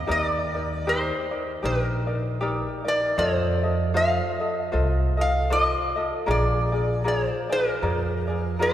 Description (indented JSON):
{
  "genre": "Hawaiian",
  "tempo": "78 BPM",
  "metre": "4/4",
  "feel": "swing 58% on 8ths",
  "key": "Eb major",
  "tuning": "A4 = 444 Hz",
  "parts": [
    { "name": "metal-body resonator slide guitar", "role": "melody", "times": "0.0-8.7 s", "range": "Bb4 to F5", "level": "-26 LUFS", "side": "equal", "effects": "none" },
    { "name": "ukulele", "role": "accompaniment", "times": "0.0-8.7 s", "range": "Eb4 to Eb5", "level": "-27 LUFS", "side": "left 1 dB", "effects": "none" },
    { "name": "upright bass", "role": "bass", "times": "0.0-8.7 s", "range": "Bb1 to F2", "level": "-27 LUFS", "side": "right 1 dB", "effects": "none" }
  ],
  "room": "wet church reverb, RT60 3.4 s",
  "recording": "recorded in a church or concert hall",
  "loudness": "-22 LUFS",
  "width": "side -11 dB against mid",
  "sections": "0.0-8.7 A section",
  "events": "none",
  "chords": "0.1 Ebmaj7; 3.2 F7; 6.3 Bb7"
}